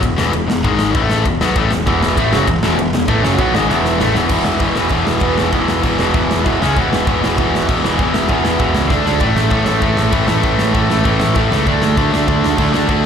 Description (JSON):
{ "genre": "punk rock", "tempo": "196 BPM", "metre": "4/4", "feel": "straight", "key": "E mixolydian", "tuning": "A4 = 440 Hz", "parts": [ { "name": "distorted electric guitar", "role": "riff", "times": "0.0-13.1 s", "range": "E2 to D4", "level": "-17 LUFS", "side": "left 7 dB", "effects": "overdrive, slapback echo" }, { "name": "fuzz picked electric bass", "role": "bass", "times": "0.0-13.0 s", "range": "E1 to D2", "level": "-19 LUFS", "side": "equal", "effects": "overdrive" }, { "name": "big rock drum kit", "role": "drums", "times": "0.0-13.0 s", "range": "crash cymbal, kick drum, ride cymbal, snare drum", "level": "-19 LUFS", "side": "equal", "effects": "none" }, { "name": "distorted electric guitar", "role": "riff", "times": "1.9-13.1 s", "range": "E2 to D4", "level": "-19 LUFS", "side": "right 14 dB", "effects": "distortion, slapback echo" } ], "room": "little or no reverb", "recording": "live gig heard through the venue's PA, club reverb", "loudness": "-13 LUFS", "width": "side -7 dB against mid", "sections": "0.0-4.3 A section; 4.3-13.1 B section", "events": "drum fill 3.7-4.3, 8.9-9.2", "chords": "0.0 E5; 0.6 G#5; 0.9 A5; 1.2 E; 4.3 E5; 6.6 C#5; 6.8 E5; 8.9 D5; 9.2 A5; 11.7 D5", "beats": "0.03 0.33 | 0.64 0.94 1.25 1.56 | 1.86 2.17 2.47 2.78 | 3.08 3.39 3.69 4.00 | 4.30 4.61 4.92 5.22 | 5.53 5.84 6.14 6.45 | 6.76 7.06 7.37 7.68 | 7.98 8.29 8.60 8.90 | 9.21 9.52 9.82 10.13 | 10.43 10.74 11.05 11.35 | 11.66 11.97 12.27 12.58 | 12.89" }